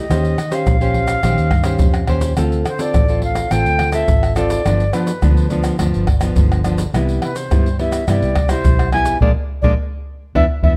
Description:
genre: samba and choro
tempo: 105 BPM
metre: 4/4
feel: straight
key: unclear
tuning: A4 = 440 Hz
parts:
  - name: reedy silver concert flute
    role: melody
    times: 0.0-10.7 s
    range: B4 to G#5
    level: -23 LUFS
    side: equal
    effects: none
  - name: nylon-string guitar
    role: accompaniment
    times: 0.0-10.7 s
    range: G2 to B#4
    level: -23 LUFS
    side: equal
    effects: none
  - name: vintage muted fingered electric bass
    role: bass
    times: 0.1-10.7 s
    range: G1 to G2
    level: -21 LUFS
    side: equal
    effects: none
  - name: egg shaker, surdo, pandeiro and tamborim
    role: percussion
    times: 0.1-10.8 s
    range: none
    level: -20 LUFS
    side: equal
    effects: none
room: light reverb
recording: none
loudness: -16 LUFS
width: mono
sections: 0.0-10.8 A section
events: band accent 9.2-10.8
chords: 0.1 D#13; 2.4 Dm7; 4.7 G7; 6.9 Cmaj7; 9.2 Bb7

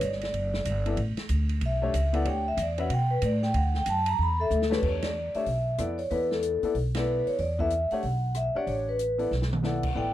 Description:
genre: modal jazz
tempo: 187 BPM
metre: 4/4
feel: swing 63% on 8ths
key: E dorian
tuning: A4 = 440 Hz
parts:
  - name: vibraphone with medium mallets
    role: melody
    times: 0.0-10.1 s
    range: A4 to B5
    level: -28 LUFS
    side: equal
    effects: slapback echo
  - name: upright bass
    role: bass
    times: 0.0-10.1 s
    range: F#1 to B2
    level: -28 LUFS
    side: equal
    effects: none
  - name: open jazz drum kit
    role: drums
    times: 0.0-9.9 s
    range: crash cymbal, hi-hat, kick drum, ride cymbal, rim click, snare drum, toms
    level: -37 LUFS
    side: right 1 dB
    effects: none
  - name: clear upright piano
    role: accompaniment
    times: 0.9-10.1 s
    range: A3 to F#5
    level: -33 LUFS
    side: left 6 dB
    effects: none
room: little or no reverb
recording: dry, close 1970s-style studio recording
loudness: -25 LUFS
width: side -13 dB against mid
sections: 0.0-4.8 A section; 4.8-10.1 B section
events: vibraphone solo 0.0-4.8; drum fill 4.5-4.8, 9.3-9.6; band accent 5.0, 6.9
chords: 0.0 A9sus4; 4.8 E7sus4

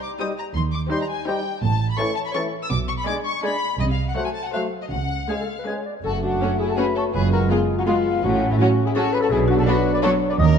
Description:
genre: cinematic, playful, whimsical film cue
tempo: 165 BPM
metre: 3/4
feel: straight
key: F# minor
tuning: A4 = 440 Hz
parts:
  - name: rich chamber violin section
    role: melody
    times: 0.0-10.6 s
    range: B3 to E6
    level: -29 LUFS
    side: left 5 dB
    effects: none
  - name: rich chamber violin section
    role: second line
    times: 0.0-10.1 s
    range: C#4 to D5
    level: -32 LUFS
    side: left 3 dB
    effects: none
  - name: rich chamber viola section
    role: accompaniment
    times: 0.0-10.1 s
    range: E3 to Gb4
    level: -29 LUFS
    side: right 2 dB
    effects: none
  - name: mellow clarinet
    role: second line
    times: 0.2-10.6 s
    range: E4 to Eb5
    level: -29 LUFS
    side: left 2 dB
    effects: none
  - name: silver concert flute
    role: second line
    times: 0.2-10.4 s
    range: E5 to A6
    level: -30 LUFS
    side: left 2 dB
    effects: none
  - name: warm bassoon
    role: accompaniment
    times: 0.2-5.8 s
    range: E3 to A3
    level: -32 LUFS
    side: right 1 dB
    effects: none
  - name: mellow French horn section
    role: sustained chords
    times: 0.2-10.6 s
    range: F#3 to G#4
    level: -28 LUFS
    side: left 5 dB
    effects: none
  - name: rich chamber double bass section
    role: bass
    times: 0.5-10.6 s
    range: F#1 to Eb2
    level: -24 LUFS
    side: right 4 dB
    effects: none
  - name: warm chamber cello section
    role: bass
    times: 0.6-10.6 s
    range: F#2 to Eb3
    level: -25 LUFS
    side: right 4 dB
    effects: none
  - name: marimba with medium mallets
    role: melody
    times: 6.0-10.6 s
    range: E4 to Eb5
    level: -27 LUFS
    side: left 4 dB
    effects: none
room: moderate scoring stage reverb, RT60 1.7 s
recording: dark, warm production, nothing above 10.4 kHz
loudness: -19 LUFS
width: side -7 dB against mid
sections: 0.0-6.0 A section; 6.0-10.6 B section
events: none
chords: 0.0 Cm; 0.6 Cm/Eb; 1.6 A; 2.7 G#dim/B; 3.8 Cdim7(no3); 4.9 C#; 6.0 F#m; 7.1 Fdim/F#; 8.2 F#m/A; 9.3 Bm

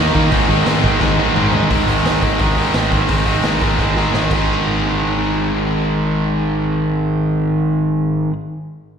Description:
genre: punk rock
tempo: 173 BPM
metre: 4/4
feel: straight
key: Ab major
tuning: A4 = 440 Hz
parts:
  - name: cranked stack guitar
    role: riff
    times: 0.0-8.3 s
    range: Ab2 to Ab4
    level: -19 LUFS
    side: left 8 dB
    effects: overdrive
  - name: distorted electric guitar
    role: riff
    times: 0.0-8.3 s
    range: Ab2 to Eb4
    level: -19 LUFS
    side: right 10 dB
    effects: overdrive, slapback echo
  - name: thick fuzz guitar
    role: riff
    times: 0.0-2.2 s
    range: Ab2 to Eb4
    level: -22 LUFS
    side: left 1 dB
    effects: distortion
  - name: picked electric bass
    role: bass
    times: 0.0-8.3 s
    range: Ab1 to Eb3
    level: -22 LUFS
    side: equal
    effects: none
  - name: raw garage drum kit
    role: drums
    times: 0.2-4.4 s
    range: crash cymbal, hi-hat, kick drum, snare drum, toms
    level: -20 LUFS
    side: equal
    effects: none
room: small room ambience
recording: live gig heard through the venue's PA, recital hall reverb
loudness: -14 LUFS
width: side -7 dB against mid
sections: 0.0-1.7 A section; 1.7-4.5 B section; 4.5-7.3 C section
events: drum fill 1.0-1.7, 3.8-4.5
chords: 0.3 Ab

